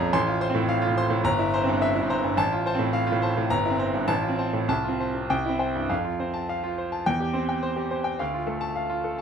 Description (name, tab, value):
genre	classical, virtuoso piano study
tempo	97-111 BPM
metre	2/4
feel	rubato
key	F major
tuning	A4 = 439 Hz
part	clear grand piano	solo	0.0-9.2 s	G1 to C6	-23 LUFS	equal	none
room	light reverb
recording	none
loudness	-23 LUFS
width	side -7 dB against mid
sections	0.0-5.9 A section; 5.9-9.2 B section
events	none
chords	0.1 F/A; 1.3 C7/G; 2.4 F/A; 3.5 C7/G; 4.1 F/A; 4.7 F/C; 5.3 C; 5.9 F; 7.1 C/E; 8.2 Dm